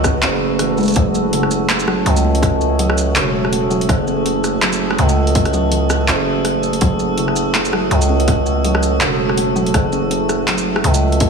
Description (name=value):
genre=half-time drum and bass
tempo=164 BPM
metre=4/4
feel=swing 56% on 16ths, half-time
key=F# minor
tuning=A4 = 439 Hz
part: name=deep dark ambient pad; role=sustained chords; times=0.0-11.3 s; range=A3 to E5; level=-21 LUFS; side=right 4 dB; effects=chorus, built-in reverb, sidechain pumping
part: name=kalimba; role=arpeggios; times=0.0-11.3 s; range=C#3 to C#4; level=-22 LUFS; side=left 1 dB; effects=tape echo
part: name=growling 808-style bass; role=bass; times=0.0-11.3 s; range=E1 to C#2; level=-18 LUFS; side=equal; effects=none
part: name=drum and bass drum kit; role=drums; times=0.0-11.3 s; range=handclaps, hi-hat, rim click, shaker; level=-21 LUFS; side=equal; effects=overdrive
part: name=electronic kick drum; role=drums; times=0.0-11.3 s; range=none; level=-17 LUFS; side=equal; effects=overdrive
part: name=metallic inharmonic drone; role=texture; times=0.0-11.3 s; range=A4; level=-24 LUFS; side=equal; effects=chorus, built-in reverb
room=light reverb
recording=small room ambience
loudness=-14 LUFS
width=side -5 dB against mid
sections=0.0-11.3 A section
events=none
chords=0.0 F#m